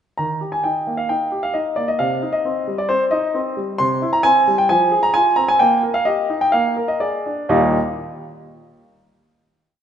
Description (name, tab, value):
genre	classical-period piano sonatina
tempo	131 BPM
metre	4/4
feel	uneven beats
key	Eb major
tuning	A4 = 442 Hz
part	clear baby grand piano	solo	0.2-7.8 s	Eb2 to C6	-16 LUFS	equal	none
room	wet recital hall reverb, RT60 1.9 s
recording	nothing above 11.0 kHz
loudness	-16 LUFS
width	side -9 dB against mid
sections	0.2-7.5 A section; 7.5-9.4 final chord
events	slowing down 2.9-7.5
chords	0.2 Eb; 2.0 Cm; 3.8 C; 4.7 Fm; 5.6 Eb/Bb; 6.5 Bb7; 7.5 Eb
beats	| 0.18 0.64 1.09 1.54 | 2.00 2.44 2.89 3.34 | 3.79 4.24 4.70 5.15 | 5.60 6.06 6.53 7.01 | 7.50